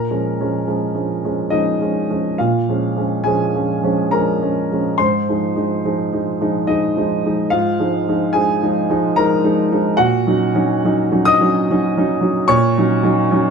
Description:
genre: neoclassical minimalist piano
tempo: 71 BPM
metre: 3/4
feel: uneven beats, rubato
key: Bb minor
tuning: A4 = 440 Hz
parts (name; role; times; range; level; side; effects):
- warm upright piano; solo; 0.0-13.5 s; Ab2 to Eb6; -15 LUFS; equal; slapback echo
room: light reverb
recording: close, detailed microphones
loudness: -15 LUFS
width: side -6 dB against mid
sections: 0.0-13.5 A section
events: none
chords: 0.0 Bbm7; 5.0 Fm7/Ab; 10.0 Gb6/Bb

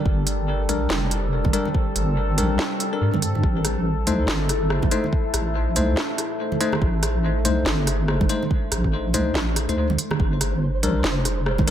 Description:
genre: deep dubstep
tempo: 142 BPM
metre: 4/4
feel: swing 60% on 16ths, half-time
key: unclear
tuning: A4 = 441 Hz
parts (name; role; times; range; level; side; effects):
- deep dark ambient pad; sustained chords; 0.0-11.7 s; G3 to A4; -28 LUFS; left 1 dB; chorus, built-in reverb
- deep soft wobble bass; bass; 0.1-11.7 s; F1 to G2; -23 LUFS; equal; chorus
- electronic kick drum; drums; 0.1-11.7 s; none; -22 LUFS; equal; none
- garage drum kit; drums; 0.3-11.7 s; hi-hat, rim click, snare drum; -26 LUFS; right 1 dB; none
- bell-like tine electric piano; stabs; 0.7-11.7 s; G3 to C5; -28 LUFS; left 4 dB; medium stereo tremolo, dub echo
- congas; percussion; 0.7-11.7 s; none; -30 LUFS; right 6 dB; dub echo
- flickering grainy texture; texture; 10.5-11.7 s; C5; -32 LUFS; right 4 dB; built-in reverb
room: light reverb, digital ambience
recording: none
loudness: -20 LUFS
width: side -10 dB against mid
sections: 0.0-11.7 A section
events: none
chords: 0.0 Gm; 3.4 Adim; 10.2 Gm

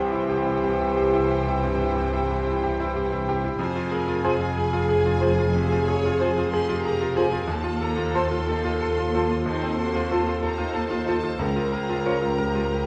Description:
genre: classical, romantic movement for piano and orchestra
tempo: 61 BPM (dotted quarters)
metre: 12/8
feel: rubato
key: F minor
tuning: A4 = 445 Hz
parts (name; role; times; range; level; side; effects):
- bright grand piano; melody; 0.0-12.9 s; C2 to Bb4; -29 LUFS; equal; none
- warm symphonic violin section; melody; 0.0-12.9 s; G5 to C6; -40 LUFS; equal; none
- large flute ensemble; second line; 0.0-12.2 s; G5 to Bb5; -38 LUFS; equal; none
- mellow clarinet; second line; 0.0-12.2 s; F4 to G4; -32 LUFS; equal; none
- mellow cor anglais; second line; 0.0-12.2 s; C5 to Db5; -34 LUFS; equal; none
- rich symphonic violin section; second line; 0.0-12.9 s; Ab4 to Db5; -38 LUFS; equal; none
- mellow bassoon; accompaniment; 0.0-12.2 s; E3 to F3; -35 LUFS; equal; none
- rich symphonic viola section; accompaniment; 0.0-12.9 s; Eb4 to Ab4; -35 LUFS; equal; none
- warm French horn section; sustained chords; 0.0-12.9 s; E3 to Bb4; -33 LUFS; equal; none
- rich studio cello section; bass; 0.0-12.9 s; Db2 to C3; -34 LUFS; equal; none
- warm symphonic double bass section; bass; 0.0-12.9 s; F1 to Eb2; -32 LUFS; equal; none
room: wet stone room reverb, RT60 0.9 s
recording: dark, warm production, nothing above 10.5 kHz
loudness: -24 LUFS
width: mono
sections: 0.0-12.9 A section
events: none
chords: 0.0 C; 3.6 Fm; 7.5 F7/Eb; 11.4 Bbm/Db

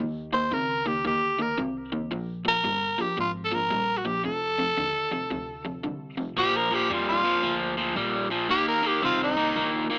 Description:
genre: electric blues shuffle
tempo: 113 BPM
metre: 4/4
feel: swing 64% on 8ths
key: Bb major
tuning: A4 = 440 Hz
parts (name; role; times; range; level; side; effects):
- crunchy overdriven guitar; riff; 0.0-10.0 s; F2 to C4; -28 LUFS; equal; none
- upright bass; bass; 0.0-10.0 s; G1 to F2; -40 LUFS; equal; none
- growling tenor saxophone; melody; 0.3-9.7 s; Eb4 to C5; -24 LUFS; equal; none
room: light reverb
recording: AM radio sound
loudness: -23 LUFS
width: side -34 dB against mid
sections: 0.0-6.4 A section; 6.4-10.0 B section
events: tenor saxophone solo 6.4-10.0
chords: 0.0 Eb5; 2.1 Bb5; 4.2 F; 6.4 Bb; 8.5 Eb5

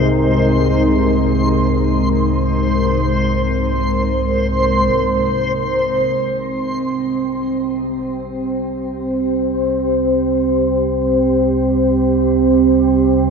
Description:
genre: dark ambient drone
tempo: free time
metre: none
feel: none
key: C minor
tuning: A4 = 440 Hz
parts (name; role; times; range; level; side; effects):
- deep dark ambient pad; sustained chords; 0.0-13.3 s; C3 to C5; -16 LUFS; right 1 dB; chorus, built-in reverb, shimmer reverb
- deep rumbling drone; drone; 0.0-13.3 s; C2 to C3; -22 LUFS; left 1 dB; built-in reverb
- backwards swelling texture; texture; 0.0-4.9 s; C5; -21 LUFS; right 1 dB; built-in reverb, shimmer reverb
room: wet cathedral reverb, RT60 5.6 s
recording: worn, warbling old tape, cassette tape, warbly pitch drift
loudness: -14 LUFS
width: side -5 dB against mid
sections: 0.0-4.9 A section; 4.9-13.3 B section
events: filter sweep on synth drone 4.9-13.3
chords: 0.0 Abadd9/C; 4.9 Cm

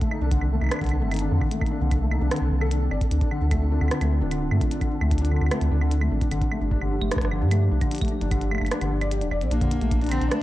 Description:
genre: IDM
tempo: 150 BPM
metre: 4/4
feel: straight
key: D phrygian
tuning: A4 = 442 Hz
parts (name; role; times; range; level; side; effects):
- warbly tape-like pad; sustained chords; 0.0-10.4 s; D3 to Bb5; -31 LUFS; equal; chorus, built-in reverb, sidechain pumping
- felt-muted upright piano; arpeggios; 0.0-10.4 s; D3 to D5; -29 LUFS; left 3 dB; vintage 12-bit sampler grit, digital delay
- electronic kick drum; drums; 0.0-10.0 s; none; -26 LUFS; equal; studio reverb
- glitchy drum kit; drums; 0.0-10.4 s; claves, hi-hat, rim click; -32 LUFS; right 2 dB; studio reverb
- flickering grainy texture; texture; 0.0-9.5 s; A4; -40 LUFS; right 2 dB; built-in reverb
- round analog bass; bass; 0.2-10.3 s; D1 to G2; -23 LUFS; equal; tube saturation
- dark cello; melody; 9.5-10.4 s; Bb3 to D4; -28 LUFS; equal; none
room: light reverb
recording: dark, warm production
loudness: -21 LUFS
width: side -15 dB against mid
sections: 0.0-9.5 A section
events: kick drops out 8.7-9.5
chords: 0.0 Cm7; 3.1 Dm7; 6.3 Gm7; 9.5 Bbmaj7

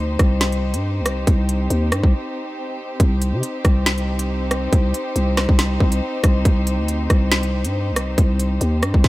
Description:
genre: hip hop, drill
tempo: 139 BPM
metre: 4/4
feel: half-time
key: C minor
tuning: A4 = 440 Hz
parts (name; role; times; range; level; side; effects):
- dark chamber string section; sustained chords; 0.0-9.1 s; C4 to C5; -26 LUFS; left 1 dB; none
- growling 808-style bass; bass; 0.0-9.0 s; C2 to C3; -20 LUFS; equal; none
- drill drum kit; drums; 0.2-9.1 s; hi-hat, kick drum, rim click, snare drum; -18 LUFS; equal; none
room: digital ambience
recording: none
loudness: -17 LUFS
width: side -18 dB against mid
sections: 0.0-9.1 A section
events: break 2.1-3.0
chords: 0.0 Cm

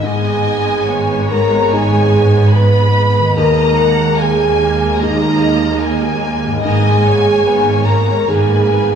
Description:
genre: cinematic, emotional film score for orchestra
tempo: 73 BPM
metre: 4/4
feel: rubato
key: G# minor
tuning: A4 = 439 Hz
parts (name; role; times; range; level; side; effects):
- rich symphonic violin section; melody; 0.0-9.0 s; B4 to A#5; -24 LUFS; left 3 dB; none
- warm symphonic violin section; second line; 0.0-9.0 s; D#5 to B5; -20 LUFS; left 1 dB; none
- felt-muted upright piano; accompaniment; 0.0-9.0 s; D#2 to G#4; -23 LUFS; left 2 dB; none
- rich symphonic viola section; accompaniment; 0.0-9.0 s; G#3 to B3; -22 LUFS; right 3 dB; none
- mellow French horn section; sustained chords; 0.0-9.0 s; D#4 to B4; -16 LUFS; right 1 dB; none
- concert harp; arpeggios; 0.0-9.0 s; G#2 to G#4; -26 LUFS; left 5 dB; none
- warm symphonic cello section; bass; 0.0-9.0 s; D#2 to G#2; -18 LUFS; right 2 dB; none
- warm symphonic double bass section; bass; 0.0-9.0 s; G#1 to D#2; -19 LUFS; right 3 dB; none
room: wet scoring stage reverb, RT60 1.6 s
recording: small room reverb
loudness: -11 LUFS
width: side -7 dB against mid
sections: 0.0-9.0 A section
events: none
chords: 0.0 G#m; 3.4 D#sus4; 6.6 G#madd9

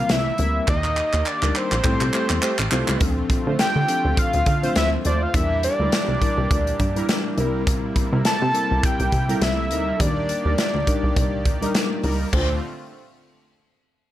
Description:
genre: early-eighties boogie funk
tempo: 103 BPM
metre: 4/4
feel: swing 56% on 16ths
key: D minor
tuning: A4 = 439 Hz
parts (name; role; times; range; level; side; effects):
- fat analog lead; melody; 0.0-11.8 s; C5 to A5; -24 LUFS; equal; none
- mellow tine electric piano; accompaniment; 0.0-12.6 s; E3 to C5; -28 LUFS; left 3 dB; fast stereo tremolo
- brassy analog pad; sustained chords; 0.0-12.6 s; C3 to D5; -33 LUFS; equal; chorus
- plucky analog bass; bass; 0.1-12.6 s; A1 to D3; -24 LUFS; equal; none
- modern studio drum kit; drums; 0.1-12.5 s; crash cymbal, handclaps, hi-hat, kick drum, snare drum; -23 LUFS; equal; gated reverb
- analog synth brass; second line; 2.1-12.6 s; G3 to C5; -28 LUFS; right 3 dB; chorus
room: little or no reverb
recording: none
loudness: -19 LUFS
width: side -13 dB against mid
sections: 0.0-3.0 A section; 3.0-12.3 B section; 12.3-14.1 C section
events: drum fill 0.7-3.0; band accent 0.7-3.0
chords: 0.0 C7; 0.7 Ebmaj7; 1.8 Am7; 3.0 Dm7; 5.3 Em7b5; 7.4 C7; 10.0 Ebmaj7; 12.3 Dm7

